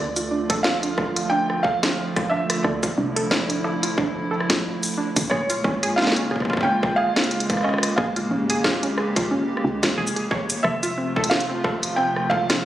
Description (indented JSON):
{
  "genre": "IDM",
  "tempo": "90 BPM",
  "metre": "4/4",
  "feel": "swing 56% on 16ths",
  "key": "unclear",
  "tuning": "A4 = 440 Hz",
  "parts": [
    { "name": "felt-muted upright piano", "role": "melody", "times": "0.0-12.7 s", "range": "Db5 to G5", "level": "-26 LUFS", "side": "right 1 dB", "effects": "dub echo" },
    { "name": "hollow soft pad", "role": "sustained chords", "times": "0.0-12.7 s", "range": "C3 to G4", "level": "-27 LUFS", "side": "right 1 dB", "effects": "chorus" },
    { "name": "warbly dusty pluck", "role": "arpeggios", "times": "0.0-12.6 s", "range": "C4 to Db5", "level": "-27 LUFS", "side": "right 1 dB", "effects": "chorus, cassette tape, digital delay" },
    { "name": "woody FM bass", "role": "bass", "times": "0.0-12.7 s", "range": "F1 to D2", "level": "-29 LUFS", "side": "equal", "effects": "none" },
    { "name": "industrial drum kit", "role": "drums", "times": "0.2-12.6 s", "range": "cabasa, hi-hat, rim click, snare drum", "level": "-24 LUFS", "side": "equal", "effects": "none" },
    { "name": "electronic kick drum", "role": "drums", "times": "0.5-12.5 s", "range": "none", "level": "-27 LUFS", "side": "equal", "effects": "distortion" }
  ],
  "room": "moderate echo chamber reverb, RT60 2.7 s",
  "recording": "recorded on a phone in the room, studio reverb, compression",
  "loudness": "-20 LUFS",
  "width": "side -13 dB against mid",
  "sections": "0.0-12.7 A section",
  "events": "none",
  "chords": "0.0 Dm; 5.3 Bbm7; 10.6 F"
}